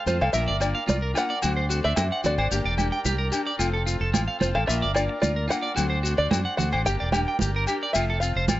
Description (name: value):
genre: highlife guitar band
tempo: 110 BPM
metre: 4/4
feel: straight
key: unclear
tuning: A4 = 440 Hz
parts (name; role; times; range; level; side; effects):
- overdriven combo organ; sustained chords; 0.0-8.6 s; C4 to F5; -36 LUFS; equal; none
- electric guitar at the edge of break-up; arpeggios; 0.0-8.6 s; F4 to G5; -29 LUFS; right 3 dB; none
- open-back banjo; melody; 0.1-8.6 s; C5 to G5; -28 LUFS; equal; none
- nylon-string guitar; accompaniment; 0.1-8.4 s; F3 to G4; -33 LUFS; left 5 dB; none
- fingered electric bass; bass; 0.1-8.6 s; E1 to F#2; -26 LUFS; equal; none
- congas; percussion; 0.1-8.6 s; none; -28 LUFS; right 4 dB; none
- maracas; percussion; 0.1-8.6 s; none; -33 LUFS; left 6 dB; none
- agogo bells; percussion; 0.2-8.6 s; none; -32 LUFS; left 3 dB; none
room: moderate small room reverb, RT60 0.6 s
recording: nothing above 7.7 kHz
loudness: -22 LUFS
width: side -15 dB against mid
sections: 0.0-8.6 A section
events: none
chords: 0.3 Bb; 1.4 D7; 2.5 Gm; 3.6 F; 4.7 Bb; 5.8 D7; 6.9 Gm; 7.9 F